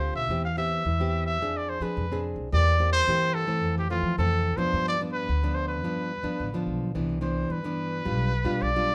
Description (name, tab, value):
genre	samba and choro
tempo	108 BPM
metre	4/4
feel	straight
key	C major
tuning	A4 = 440 Hz
part	bright trumpet	melody	0.0-8.9 s	F4 to F5	-30 LUFS	equal	none
part	nylon-string guitar	accompaniment	0.0-8.9 s	F2 to Ab4	-32 LUFS	equal	none
part	upright bass	bass	0.0-8.9 s	A1 to G3	-31 LUFS	equal	none
room	moderate studio reverb, RT60 0.6 s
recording	none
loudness	-27 LUFS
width	mono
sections	0.0-8.9 A section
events	none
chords	0.3 Cmaj7/E; 1.4 Fm6; 2.5 C7/E; 3.6 Fmaj7; 4.7 G7; 7.0 Cmaj9; 8.1 G7/B